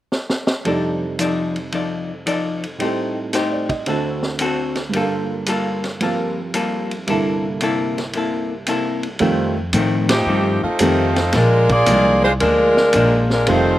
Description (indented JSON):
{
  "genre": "jazz, big band swing",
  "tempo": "112 BPM",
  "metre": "4/4",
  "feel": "swing 69% on 8ths",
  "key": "F mixolydian",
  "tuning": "A4 = 440 Hz",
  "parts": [
    { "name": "vintage drum kit", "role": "drums", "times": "0.1-13.6 s", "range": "hi-hat, kick drum, ride cymbal, snare drum", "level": "-26 LUFS", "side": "equal", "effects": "none" },
    { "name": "warm grand piano", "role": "accompaniment", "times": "0.6-13.8 s", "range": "C2 to Eb5", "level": "-23 LUFS", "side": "right 3 dB", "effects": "none" },
    { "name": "vintage hollow-body jazz guitar", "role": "accompaniment", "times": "0.7-13.8 s", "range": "F2 to D5", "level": "-22 LUFS", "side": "left 3 dB", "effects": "none" },
    { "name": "upright bass", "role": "bass", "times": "9.2-13.8 s", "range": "F1 to A2", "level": "-20 LUFS", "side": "equal", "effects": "none" },
    { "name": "warm saxophone section", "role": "melody", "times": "10.1-13.8 s", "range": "F3 to D5", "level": "-16 LUFS", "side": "equal", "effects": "slapback echo" }
  ],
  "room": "little or no reverb",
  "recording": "recorded outdoors, with no room sound",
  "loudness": "-16 LUFS",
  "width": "side -14 dB against mid",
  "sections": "0.7-9.2 A section; 9.2-13.8 B section",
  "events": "drum fill 0.1-0.7; band accent 10.0",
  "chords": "0.0 N.C.; 0.7 F13; 2.8 Am7b5; 3.9 D7; 4.9 Gm9; 7.1 C13; 9.2 F7; 11.3 Bb7"
}